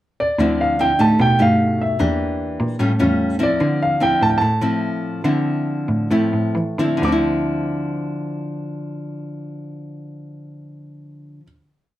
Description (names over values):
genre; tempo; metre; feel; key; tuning
bossa nova; 127-150 BPM; 4/4; straight; D minor; A4 = 439 Hz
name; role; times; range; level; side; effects
warm grand piano; melody; 0.2-11.4 s; D5 to D6; -19 LUFS; right 1 dB; none
nylon-string guitar; accompaniment; 0.4-11.5 s; A2 to G4; -20 LUFS; left 1 dB; none
clear cello; bass; 0.4-11.4 s; D2 to E3; -22 LUFS; equal; none
room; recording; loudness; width
wet small room reverb, RT60 0.6 s; heard from further back in the room; -16 LUFS; side -14 dB against mid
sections
0.0-0.4 pickup bar; 0.4-7.0 A section; 7.0-10.8 final chord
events
slowing down 3.6-7.0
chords
0.4 Dm9; 1.2 Baug7; 2.0 Em7b5; 2.8 A7b13; 3.6 Dm9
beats
| 0.39 0.79 1.19 1.59 | 1.99 2.40 2.80 3.20 | 3.60 4.00 4.41 4.82 | 5.24 5.67 6.10 6.55 | 7.02 7.49 7.96 8.44 | 8.91 9.38 9.85 10.32